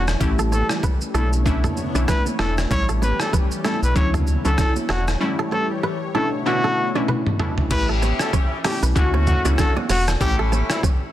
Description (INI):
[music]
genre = afrobeats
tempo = 96 BPM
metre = 4/4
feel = swing 58% on 16ths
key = unclear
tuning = A4 = 437 Hz
[part]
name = clear trumpet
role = melody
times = 0.0-10.8 s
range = E4 to C#5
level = -26 LUFS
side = left 1 dB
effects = digital delay
[part]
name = warm analog pad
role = sustained chords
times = 0.0-7.7 s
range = D3 to C#5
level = -30 LUFS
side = left 1 dB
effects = chorus
[part]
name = kora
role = riff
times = 0.0-11.0 s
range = A4 to D5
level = -29 LUFS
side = right 4 dB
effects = digital delay
[part]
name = sub bass with octave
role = bass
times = 0.0-10.6 s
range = E1 to D2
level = -21 LUFS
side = equal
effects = none
[part]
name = trip hop sampler-style drum kit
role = drums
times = 0.1-11.0 s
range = crash cymbal, hi-hat, kick drum, rim click, shaker, toms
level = -23 LUFS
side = equal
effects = none
[part]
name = glassy wavetable pluck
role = accompaniment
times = 0.2-11.1 s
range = B2 to G4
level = -26 LUFS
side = left 1 dB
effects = chorus
[part]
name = congas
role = percussion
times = 0.2-11.0 s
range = none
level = -32 LUFS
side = right 7 dB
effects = none
[part]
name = clear horn section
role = second line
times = 7.7-10.8 s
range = A3 to G4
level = -29 LUFS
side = left 2 dB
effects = digital delay
[sound]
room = light reverb, digital ambience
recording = dense, heavily limited modern master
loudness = -18 LUFS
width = side -13 dB against mid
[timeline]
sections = 0.0-7.7 A section; 7.7-11.1 B section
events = drum fill 7.1-7.7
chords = 0.2 A7; 1.1 Bm11; 2.7 A7; 4.0 Dmaj9; 5.2 A7; 6.1 Bm11; 7.7 A7; 9.0 Dmaj9; 10.2 A7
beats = | 0.21 0.83 1.46 2.08 | 2.71 3.33 3.96 4.58 | 5.21 5.83 6.46 7.08 | 7.71 8.33 8.96 9.58 | 10.21 10.83